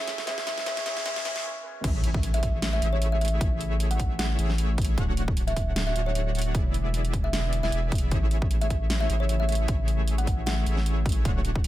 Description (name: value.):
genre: future bass.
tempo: 153 BPM.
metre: 4/4.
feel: swing 55% on 16ths, half-time.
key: A major.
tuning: A4 = 439 Hz.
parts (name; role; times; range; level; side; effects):
felt-muted upright piano; accompaniment; 0.0-1.9 s; E3 to G#4; -42 LUFS; left 2 dB; sidechain pumping, ping-pong delay.
ethereal airy pad; sustained chords; 0.0-11.7 s; C#3 to C#5; -39 LUFS; left 2 dB; none.
soft supersaw; riff; 0.0-11.7 s; G#3 to G#5; -35 LUFS; equal; sidechain pumping.
riser and impact; sound effects; 0.0-3.4 s; none; -36 LUFS; equal; none.
dubstep drum kit; drums; 0.1-11.7 s; crash cymbal, hi-hat, snare drum; -33 LUFS; equal; none.
kalimba; melody; 0.3-10.9 s; C#5 to F#5; -33 LUFS; equal; sidechain pumping, ping-pong delay.
saturated sub bass; bass; 1.8-11.7 s; D1 to A1; -26 LUFS; equal; sidechain pumping.
electronic kick drum; drums; 1.8-11.6 s; none; -27 LUFS; equal; none.
room: little or no reverb.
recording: high-pass filter.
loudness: -24 LUFS.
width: side -14 dB against mid.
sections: 0.0-1.8 A section; 1.8-11.7 B section.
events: build-up 0.0-1.8; drum fill 0.0-1.4; riser 0.0-1.4; break 1.4-1.8; drop 1.8-11.7; impact 1.8-3.4.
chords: 0.3 E7; 1.8 Amaj7; 5.0 Dmaj7; 6.5 E7; 8.1 Amaj7.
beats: | 0.27 0.66 1.06 1.45 | 1.84 2.23 2.62 3.02 | 3.41 3.80 4.19 4.58 | 4.98 5.37 5.76 6.15 | 6.55 6.94 7.33 7.72 | 8.11 8.51 8.90 9.29 | 9.68 10.07 10.47 10.86 | 11.25 11.64.